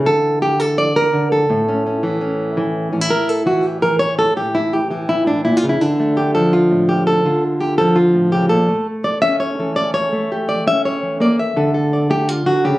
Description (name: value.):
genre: flamenco.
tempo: 167 BPM.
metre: 4/4.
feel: straight.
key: A phrygian dominant.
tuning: A4 = 440 Hz.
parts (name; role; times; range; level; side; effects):
flamenco guitar; solo; 0.0-12.8 s; A2 to E5; -14 LUFS; equal; none.
room: light reverb.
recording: recorded on a phone in the room, club ambience.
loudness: -14 LUFS.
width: side -17 dB against mid.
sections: 0.0-2.9 A section; 2.9-12.8 B section.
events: nylon-string guitar solo 2.9-12.8.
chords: 0.1 Dsus2; 1.5 A; 2.9 A7; 5.8 Dmadd9; 8.7 A7; 11.6 D5.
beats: | 0.06 0.42 0.78 1.13 | 1.49 1.85 2.21 2.57 | 2.93 3.29 3.65 4.01 | 4.37 4.73 5.09 5.45 | 5.81 6.17 6.53 6.89 | 7.25 7.61 7.97 8.33 | 8.69 9.05 9.41 9.77 | 10.13 10.49 10.85 11.21 | 11.57 11.93 12.29 12.65.